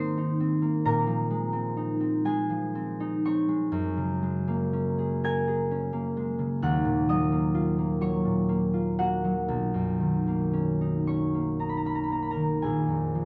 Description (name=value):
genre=classical, solo harp piece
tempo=36-44 BPM (dotted quarters)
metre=6/8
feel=rubato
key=Eb minor from 3.7 s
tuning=A4 = 438 Hz
part: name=concert harp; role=solo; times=0.0-13.2 s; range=Bb1 to Ab6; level=-27 LUFS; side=equal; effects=none
room=wet large studio reverb, RT60 1.4 s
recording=dark, warm production, nothing above 10.7 kHz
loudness=-27 LUFS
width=mono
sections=0.0-13.2 A section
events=none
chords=0.0 G#add9; 0.8 A#m11; 3.7 Gbadd9; 6.6 Ebmadd9; 9.5 Bmaj9; 12.6 Bb7sus4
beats=| 0.83 2.23 | 3.71 5.22 | 6.62 8.02 | 9.47 11.07 | 12.62